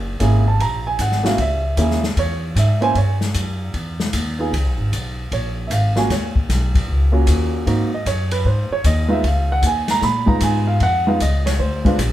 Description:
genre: jazz piano trio.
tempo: 153 BPM.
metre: 4/4.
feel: swing 66% on 8ths.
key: Db mixolydian.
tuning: A4 = 440 Hz.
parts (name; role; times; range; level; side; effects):
upright bass; bass; 0.0-12.1 s; Gb1 to Bb2; -19 LUFS; equal; none.
warm grand piano; melody; 0.2-12.0 s; Ab3 to Cb6; -20 LUFS; right 2 dB; none.
open jazz drum kit; drums; 0.2-12.1 s; hi-hat, kick drum, ride cymbal, snare drum; -24 LUFS; left 2 dB; none.
room: light reverb.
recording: band playing live in one room.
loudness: -16 LUFS.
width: side -13 dB against mid.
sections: 0.0-12.1 A section.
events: none.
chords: 0.0 Gb9 (rootless); 2.9 Eb(#9); 4.5 Db7; 6.1 Ebm7; 7.7 Ab7; 9.2 Db9; 10.8 F7(no3); 11.6 Bb7b9.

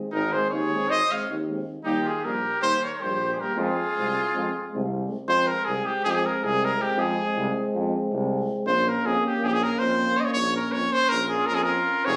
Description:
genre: balkan folk.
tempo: 318 BPM (eighths).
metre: 9/8.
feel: straight.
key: F minor.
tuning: A4 = 442 Hz.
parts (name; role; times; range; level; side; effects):
dark euphonium; accompaniment; 0.0-12.2 s; G3 to Bb3; -33 LUFS; equal; none.
mellow euphonium; accompaniment; 0.0-12.2 s; Bb3 to Db4; -36 LUFS; equal; none.
warm trumpet; melody; 0.1-12.2 s; G4 to F5; -26 LUFS; equal; none.
bright trumpet; second line; 0.1-4.9, 11.3-12.2 s; Eb4 to Db5; -33 LUFS; equal; none.
clear tuba; bass; 0.1-12.2 s; F1 to F2; -32 LUFS; equal; none.
room: light reverb.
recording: recorded on a phone in the room, studio reverb, compression.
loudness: -25 LUFS.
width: mono.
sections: 0.0-5.3 A section; 5.3-12.2 B section.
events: none.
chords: 0.0 Ab; 1.8 Eb; 3.6 Fm; 8.7 Bbm.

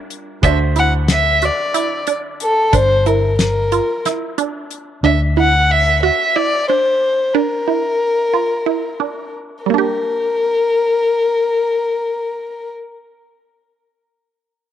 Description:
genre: progressive instrumental, band music in an uneven meter.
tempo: 182 BPM (eighths).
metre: 7/8.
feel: straight.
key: G dorian.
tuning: A4 = 440 Hz.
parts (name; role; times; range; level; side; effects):
clear baby grand piano; accompaniment; 0.0-2.7 s; D3 to C5; -28 LUFS; right 12 dB; none.
resonant blip pluck; arpeggios; 0.0-12.8 s; G3 to G4; -21 LUFS; right 10 dB; chorus, phaser.
damped 70s drum kit; drums; 0.1-4.9 s; hi-hat, kick drum, snare drum; -19 LUFS; left 2 dB; none.
dark violin; melody; 0.4-12.7 s; A4 to F#5; -16 LUFS; left 2 dB; none.
hollow-body short-scale fingered electric bass; bass; 0.4-6.1 s; G1 to D2; -17 LUFS; left 1 dB; none.
room: moderate spring reverb, RT60 2.5 s.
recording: 1960s-style stereo.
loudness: -14 LUFS.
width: side -10 dB against mid.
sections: 0.0-9.7 A section; 9.7-12.0 B section.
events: none.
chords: 0.4 D7; 2.7 Gm; 5.0 D7(no3); 7.3 Dmadd9; 9.7 Gm.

